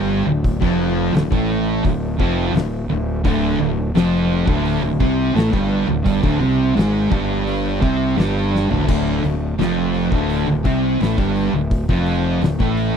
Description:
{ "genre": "stoner and doom metal", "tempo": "85 BPM", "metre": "4/4", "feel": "straight", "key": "D minor", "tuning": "A4 = 440 Hz", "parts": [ { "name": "sludgy distorted guitar", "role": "riff", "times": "0.0-13.0 s", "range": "D2 to C4", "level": "-24 LUFS", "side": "right 1 dB", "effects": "overdrive" }, { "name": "thick fuzz guitar", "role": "riff", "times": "0.0-13.0 s", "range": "D2 to C4", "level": "-23 LUFS", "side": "left 10 dB", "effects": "distortion" }, { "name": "thick fuzz guitar", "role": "riff", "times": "0.0-13.0 s", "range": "D2 to C4", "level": "-22 LUFS", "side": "right 9 dB", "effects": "distortion" }, { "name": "fuzz fingered electric bass", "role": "bass", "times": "0.0-13.0 s", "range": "D1 to C2", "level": "-23 LUFS", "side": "equal", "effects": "overdrive" }, { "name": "oversized low-tuned drum kit", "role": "drums", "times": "0.4-12.9 s", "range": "crash cymbal, hi-hat, kick drum, snare drum, toms", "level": "-22 LUFS", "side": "left 1 dB", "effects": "none" } ], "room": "small room ambience", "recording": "dry, close 1970s-style studio recording", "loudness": "-16 LUFS", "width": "side -7 dB against mid", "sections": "0.0-8.9 A section; 8.9-13.0 B section", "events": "drum fill 8.5-8.9", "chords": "0.0 Dm" }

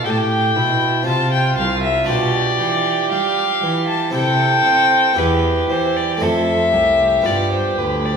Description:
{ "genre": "classical, baroque-style sonata movement with continuo", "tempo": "58 BPM", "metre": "3/4", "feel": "rubato", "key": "C major", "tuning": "A4 = 440 Hz", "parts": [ { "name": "rich violin", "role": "melody", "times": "0.0-8.2 s", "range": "B4 to A5", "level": "-17 LUFS", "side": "left 3 dB", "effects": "none" }, { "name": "dark violin", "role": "second line", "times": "0.0-8.2 s", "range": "E4 to A4", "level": "-22 LUFS", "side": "right 6 dB", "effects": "none" }, { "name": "harpsichord", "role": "accompaniment", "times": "0.0-8.2 s", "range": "C2 to C5", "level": "-23 LUFS", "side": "equal", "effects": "none" }, { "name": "rich cello", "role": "bass", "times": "0.0-8.2 s", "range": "C2 to C4", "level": "-23 LUFS", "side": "right 1 dB", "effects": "none" } ], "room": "wet recital hall reverb, RT60 1.6 s", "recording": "heard from further back in the room", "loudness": "-14 LUFS", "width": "side -6 dB against mid", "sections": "0.0-8.2 A section", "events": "none", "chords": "0.0 C; 1.1 F5/C; 2.1 G7/B; 4.1 C; 5.2 Em; 6.2 F; 7.3 G7" }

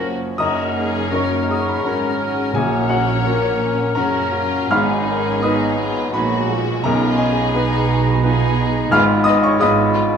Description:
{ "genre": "classical, romantic movement for piano and orchestra", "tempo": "84 BPM", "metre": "3/4", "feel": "uneven beats, rubato", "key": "F# major", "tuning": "A4 = 439 Hz", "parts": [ { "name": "clear baby grand piano", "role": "melody", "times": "0.0-10.2 s", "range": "F#1 to E#6", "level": "-20 LUFS", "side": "left 2 dB", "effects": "none" }, { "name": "warm chamber violin section", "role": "melody", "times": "0.0-10.0 s", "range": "F#4 to C#5", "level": "-28 LUFS", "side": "left 6 dB", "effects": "none" }, { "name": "warm clarinet", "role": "second line", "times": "0.0-10.2 s", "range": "C#4 to F4", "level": "-28 LUFS", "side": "left 2 dB", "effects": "none" }, { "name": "warm studio violin section", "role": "second line", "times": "0.0-10.0 s", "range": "C#4 to F#4", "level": "-29 LUFS", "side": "equal", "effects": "none" }, { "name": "dark bassoon", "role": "accompaniment", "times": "0.0-10.2 s", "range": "E#3 to Ab3", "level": "-29 LUFS", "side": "right 2 dB", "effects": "none" }, { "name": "dark chamber viola section", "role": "accompaniment", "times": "0.0-10.0 s", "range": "G#3 to C#4", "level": "-28 LUFS", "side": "right 1 dB", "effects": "none" }, { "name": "dark chamber cello section", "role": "bass", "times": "0.0-10.2 s", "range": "F#2 to B2", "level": "-26 LUFS", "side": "right 4 dB", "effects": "none" }, { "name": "dark chamber double bass section", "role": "bass", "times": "0.0-10.2 s", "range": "F#1 to B1", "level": "-25 LUFS", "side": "right 6 dB", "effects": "none" }, { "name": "mellow cor anglais", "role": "second line", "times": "0.4-10.2 s", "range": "A#4 to B4", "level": "-28 LUFS", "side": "equal", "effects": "none" }, { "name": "mellow hollow large flute ensemble", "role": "second line", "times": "0.4-10.2 s", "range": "F5 to G#5", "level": "-31 LUFS", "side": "left 1 dB", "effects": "none" }, { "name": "mellow French horn section", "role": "sustained chords", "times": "1.2-10.2 s", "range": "D#4 to B4", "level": "-25 LUFS", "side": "left 3 dB", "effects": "none" }, { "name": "timpani", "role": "percussion", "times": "2.5-3.6 s", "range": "A#2", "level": "-29 LUFS", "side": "equal", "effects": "none" } ], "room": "wet scoring stage reverb, RT60 1.7 s", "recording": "studio reverb", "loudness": "-15 LUFS", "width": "side -7 dB against mid", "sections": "0.4-10.2 A section", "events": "none", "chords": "0.4 F#; 4.7 G#m7; 6.8 G#m/B; 8.9 Fm7b5/Ab" }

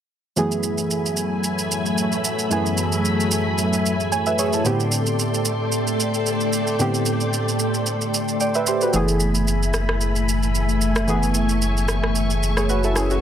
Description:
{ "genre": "amapiano", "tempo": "112 BPM", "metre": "4/4", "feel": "swing 55% on 16ths", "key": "F# minor", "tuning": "A4 = 440 Hz", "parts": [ { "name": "warm analog keys", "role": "accompaniment", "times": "0.4-13.2 s", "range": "F#2 to G#5", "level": "-23 LUFS", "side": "right 2 dB", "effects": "chorus" }, { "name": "string machine, full ensemble", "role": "sustained chords", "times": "0.4-13.2 s", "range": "F#3 to C#6", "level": "-23 LUFS", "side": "left 1 dB", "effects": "ensemble chorus" }, { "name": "electronic shaker and rim click", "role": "drums", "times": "0.4-13.2 s", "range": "none", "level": "-26 LUFS", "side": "right 2 dB", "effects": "overdrive" }, { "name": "warm sub bass", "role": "bass", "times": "8.9-13.2 s", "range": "F#1", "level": "-22 LUFS", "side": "equal", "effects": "none" } ], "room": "light reverb", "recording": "none", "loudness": "-19 LUFS", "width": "side -9 dB against mid", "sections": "0.4-13.2 A section", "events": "none", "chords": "0.4 F#m11; 4.7 Am11; 8.9 F#m11" }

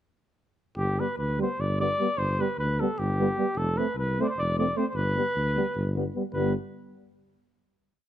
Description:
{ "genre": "balkan folk, Balkan brass band", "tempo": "303 BPM (eighths)", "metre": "7/8", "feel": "straight", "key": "G mixolydian", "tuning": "A4 = 436 Hz", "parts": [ { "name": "clear flugelhorn", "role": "melody", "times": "0.8-6.5 s", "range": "G4 to D5", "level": "-29 LUFS", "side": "equal", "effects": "none" }, { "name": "dark tuba", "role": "bass", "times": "0.8-6.5 s", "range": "F1 to D2", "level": "-29 LUFS", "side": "equal", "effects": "none" }, { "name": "mellow trombone", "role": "accompaniment", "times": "1.0-6.5 s", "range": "G3 to A3", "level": "-32 LUFS", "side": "right 6 dB", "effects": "none" }, { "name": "warm euphonium", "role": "accompaniment", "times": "1.0-6.5 s", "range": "B3 to C4", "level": "-34 LUFS", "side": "left 7 dB", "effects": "none" } ], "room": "light reverb", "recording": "close, detailed microphones", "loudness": "-25 LUFS", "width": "side -11 dB against mid", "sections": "0.8-6.3 A section; 6.3-7.7 final chord", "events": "none", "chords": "0.8 G; 3.6 F; 4.9 G" }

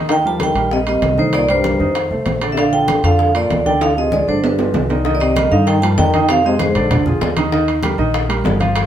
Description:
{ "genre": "Afro-Cuban jazz", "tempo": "194 BPM", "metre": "4/4", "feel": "straight", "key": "unclear", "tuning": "A4 = 439 Hz", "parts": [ { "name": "warm grand piano", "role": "accompaniment", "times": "0.0-8.9 s", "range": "D3 to F5", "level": "-20 LUFS", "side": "right 2 dB", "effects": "none" }, { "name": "upright bass", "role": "bass", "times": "0.0-8.9 s", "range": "G1 to G2", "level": "-21 LUFS", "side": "left 1 dB", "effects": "none" }, { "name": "vibraphone with medium hard mallets", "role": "melody", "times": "0.1-7.0 s", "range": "B4 to A5", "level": "-18 LUFS", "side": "right 3 dB", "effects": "none" }, { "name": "mellow trombone", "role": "second line", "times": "0.1-7.0 s", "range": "G2 to F3", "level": "-21 LUFS", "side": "left 4 dB", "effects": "none" }, { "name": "bongos", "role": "percussion", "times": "0.1-8.9 s", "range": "none", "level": "-27 LUFS", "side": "left 6 dB", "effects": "none" }, { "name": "congas", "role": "percussion", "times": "0.1-8.9 s", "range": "none", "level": "-24 LUFS", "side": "left 1 dB", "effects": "none" }, { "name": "timbales", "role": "percussion", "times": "0.1-8.9 s", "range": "none", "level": "-24 LUFS", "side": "right 4 dB", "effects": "none" } ], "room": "moderate stone room reverb, RT60 0.9 s", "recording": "band playing live in one room", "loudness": "-13 LUFS", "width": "side -10 dB against mid", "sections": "0.0-5.1 A section; 5.1-8.9 B section", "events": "drum fill 3.8-5.1", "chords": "0.1 Eb6; 1.3 Cm7; 2.0 F7; 2.6 Bbmaj7; 3.8 Ddim; 4.4 G7; 5.1 Cm7; 6.3 Fm7; 6.9 Bb7; 7.5 Eb" }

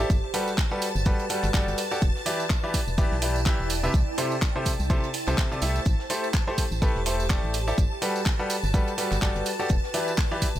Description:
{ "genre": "piano house", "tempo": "125 BPM", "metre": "4/4", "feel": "swing 57% on 16ths", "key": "unclear", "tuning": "A4 = 440 Hz", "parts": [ { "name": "string machine, violins", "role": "sustained chords", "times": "0.0-10.6 s", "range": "A5", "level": "-35 LUFS", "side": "left 1 dB", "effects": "ensemble chorus, sidechain pumping" }, { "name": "clear baby grand piano", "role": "riff", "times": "0.0-10.5 s", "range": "C3 to E5", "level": "-29 LUFS", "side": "equal", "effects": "sidechain pumping, dub echo" }, { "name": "organ-like FM bass", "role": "bass", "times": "0.0-10.6 s", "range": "E1 to C2", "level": "-28 LUFS", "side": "equal", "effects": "sidechain pumping" }, { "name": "house drum kit", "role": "drums", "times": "0.0-10.6 s", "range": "handclaps, hi-hat, tambourine", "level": "-32 LUFS", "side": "right 2 dB", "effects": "none" }, { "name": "ethereal airy pad", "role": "texture", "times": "0.0-10.6 s", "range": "E4 to A5", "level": "-35 LUFS", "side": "right 1 dB", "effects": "ensemble chorus, built-in reverb, sidechain pumping" }, { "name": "compact cocktail drum kit", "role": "drums", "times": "0.1-10.6 s", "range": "hi-hat, shaker, snare drum", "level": "-42 LUFS", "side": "right 4 dB", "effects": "none" }, { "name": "electronic kick drum", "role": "drums", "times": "0.1-10.5 s", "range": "none", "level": "-24 LUFS", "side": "equal", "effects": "none" } ], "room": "small room ambience", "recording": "none", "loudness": "-23 LUFS", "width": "side -13 dB against mid", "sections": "0.0-10.6 A section", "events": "none", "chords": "0.1 Gmaj9; 2.0 Em7; 3.9 C6; 5.9 Am7; 7.8 Gmaj9; 9.7 Em7" }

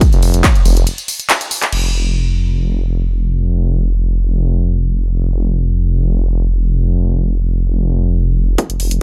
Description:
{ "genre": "driving peak-time techno", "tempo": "free time", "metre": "none", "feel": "none", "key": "unclear", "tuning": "A4 = 440 Hz", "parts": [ { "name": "electronic kick drum", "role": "drums", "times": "0.0-0.5, 8.6-8.7 s", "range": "none", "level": "-14 LUFS", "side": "equal", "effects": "high-pass filter on kick, high-pass filter on room" }, { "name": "punchy analog drum machine", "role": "drums", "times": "0.0-1.8, 8.6-9.0 s", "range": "crash cymbal, handclaps, hi-hat, ride cymbal, tambourine", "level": "-20 LUFS", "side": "equal", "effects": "none" }, { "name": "detuned saw bass", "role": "bass", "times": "0.1-9.0 s", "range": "F1", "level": "-16 LUFS", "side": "equal", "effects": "sidechain pumping" } ], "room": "digital ambience", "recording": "none", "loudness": "-16 LUFS", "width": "mono", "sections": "0.0-1.7 A section; 1.7-8.6 B section", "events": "drop 0.0-1.7; break 0.9-1.7", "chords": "none" }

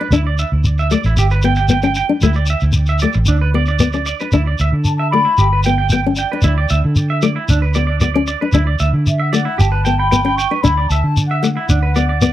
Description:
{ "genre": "highlife guitar band", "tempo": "114 BPM", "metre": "4/4", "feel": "straight", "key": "D major", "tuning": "A4 = 440 Hz", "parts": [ { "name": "nylon-string guitar", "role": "accompaniment", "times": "0.0-12.3 s", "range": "A3 to D4", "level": "-18 LUFS", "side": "left 6 dB", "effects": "none" }, { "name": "clean electric guitar", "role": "arpeggios", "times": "0.0-12.3 s", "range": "D4 to G5", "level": "-21 LUFS", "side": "right 6 dB", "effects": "tape echo" }, { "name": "vintage muted fingered electric bass", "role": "bass", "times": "0.1-12.3 s", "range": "G1 to D3", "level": "-16 LUFS", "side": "right 1 dB", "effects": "none" }, { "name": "shekere", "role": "percussion", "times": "0.1-12.3 s", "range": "none", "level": "-18 LUFS", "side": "left 1 dB", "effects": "none" }, { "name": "mellow baroque flute", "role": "melody", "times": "4.8-12.3 s", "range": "D5 to C#6", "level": "-20 LUFS", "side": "left 3 dB", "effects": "none" } ], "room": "little or no reverb", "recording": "dry, close 1970s-style studio recording", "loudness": "-13 LUFS", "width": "side -13 dB against mid", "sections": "0.0-4.3 A section; 4.3-12.3 B section", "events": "none", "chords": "0.1 Dsus2; 1.2 G; 2.2 Dsus2; 3.3 Bm/D; 4.3 Dsus2; 5.4 G; 6.4 Dsus2; 7.5 Bm/D; 8.5 Dsus2; 9.6 G; 10.7 Dsus2; 11.7 Bm/D" }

